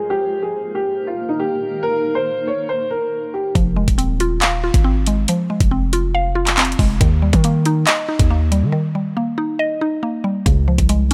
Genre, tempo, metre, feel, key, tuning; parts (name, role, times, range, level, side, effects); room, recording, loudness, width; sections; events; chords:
hip hop, drill; 139 BPM; 4/4; half-time; F minor; A4 = 440 Hz
dark grand piano; melody; 0.0-3.5 s; Eb4 to Db5; -22 LUFS; equal; low-pass filter, delay
granular cloud pad; sustained chords; 0.0-3.5 s; Bb3 to Bb4; -32 LUFS; equal; built-in reverb, low-pass filter
mallet-like synth pluck; accompaniment; 3.6-11.1 s; Db3 to F5; -22 LUFS; equal; chorus
hard-hitting 808-style bass; bass; 3.6-11.1 s; Eb1 to Eb3; -20 LUFS; equal
drill drum kit; drums; 3.6-11.1 s; handclaps, hi-hat, kick drum; -19 LUFS; equal
digital ambience; -18 LUFS; mono
0.0-3.6 A section; 3.6-11.1 B section
filter sweep 0.0-3.6; break 8.7-10.5
0.1 Eb; 3.6 Fm; 7.0 Eb; 10.5 Db